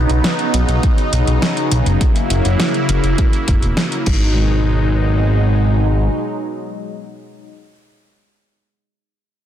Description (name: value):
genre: synthwave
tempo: 102 BPM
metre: 4/4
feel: straight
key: G# minor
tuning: A4 = 438 Hz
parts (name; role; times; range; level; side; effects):
- phased analog pad; sustained chords; 0.0-7.5 s; B2 to E4; -19 LUFS; equal; phaser, chorus, sidechain pumping
- fat analog bass; bass; 0.0-6.1 s; E1 to B1; -15 LUFS; equal; none
- pop drum kit; drums; 0.1-4.2 s; crash cymbal, hi-hat, snare drum; -22 LUFS; equal; none
- electronic kick drum; drums; 0.8-4.2 s; none; -15 LUFS; equal; none
room: light reverb, digital ambience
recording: dense, heavily limited modern master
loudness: -14 LUFS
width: side -10 dB against mid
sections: 0.0-4.4 A section; 4.4-6.7 B section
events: none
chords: 0.0 Badd9; 2.0 F#7; 4.1 G#m7